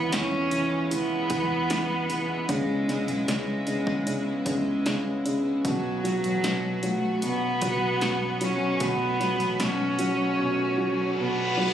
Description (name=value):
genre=pop ballad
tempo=76 BPM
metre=4/4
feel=straight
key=unclear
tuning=A4 = 440 Hz
part: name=warm cello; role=melody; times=0.0-11.7 s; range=F#3 to C#4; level=-28 LUFS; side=equal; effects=tape echo
part: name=felt-muted upright piano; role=accompaniment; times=0.0-11.7 s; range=B2 to F#3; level=-28 LUFS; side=right 1 dB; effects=none
part: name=rich studio string section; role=sustained chords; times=0.0-11.7 s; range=C#3 to F#4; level=-34 LUFS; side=left 1 dB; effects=none
part: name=vintage muted fingered electric bass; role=bass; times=0.0-10.3 s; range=A1 to E2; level=-38 LUFS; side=left 1 dB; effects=none
part: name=punchy analog drum machine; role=drums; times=0.1-10.2 s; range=hi-hat, kick drum, snare drum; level=-32 LUFS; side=equal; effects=overdrive
part: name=reverse cymbal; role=sound effects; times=10.8-11.7 s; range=none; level=-31 LUFS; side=left 3 dB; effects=none
room=light reverb, studio ambience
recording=recorded on a phone in the room, studio reverb, compression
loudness=-24 LUFS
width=side -10 dB against mid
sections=0.0-11.7 A section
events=reverse cymbal 10.8-11.7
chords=0.0 E6; 2.5 C#m7; 5.6 Bsus2